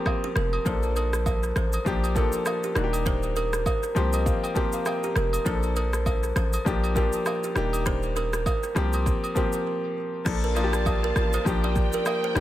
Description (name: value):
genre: afrobeats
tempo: 100 BPM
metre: 4/4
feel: swing 58% on 16ths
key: Bb major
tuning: A4 = 440 Hz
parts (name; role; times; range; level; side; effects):
- clear grand piano; accompaniment; 0.0-12.4 s; Eb3 to Bb5; -29 LUFS; left 5 dB; none
- afro-pop drum kit; drums; 0.1-12.4 s; crash cymbal, kick drum, rim click, shaker; -29 LUFS; equal; tape echo
- agogo bells and woodblock; percussion; 0.1-12.2 s; none; -36 LUFS; right 3 dB; tape echo
- kalimba; riff; 0.2-12.4 s; G4 to D5; -29 LUFS; right 3 dB; tape echo
- hard-hitting 808-style bass; bass; 0.4-12.4 s; Eb1 to C2; -26 LUFS; equal; none
- warm studio string section; sustained chords; 10.3-12.4 s; Eb3 to A5; -32 LUFS; right 1 dB; none
room: light reverb, studio reverb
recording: echo-heavy mix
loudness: -23 LUFS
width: side -13 dB against mid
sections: 0.0-10.3 A section; 10.3-12.4 B section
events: break 0.0-0.7, 9.7-10.3; grand piano fill 3.7-5.5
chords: 0.0 C7sus4; 0.7 Bbmaj7; 1.9 Gm7/Bb; 2.8 Ebmaj7; 4.0 C7sus4; 5.5 Bbmaj7; 6.7 Gm7/Bb; 7.6 Ebmaj7; 8.8 C7sus4; 10.3 Bbmaj7; 11.5 Gm7/Bb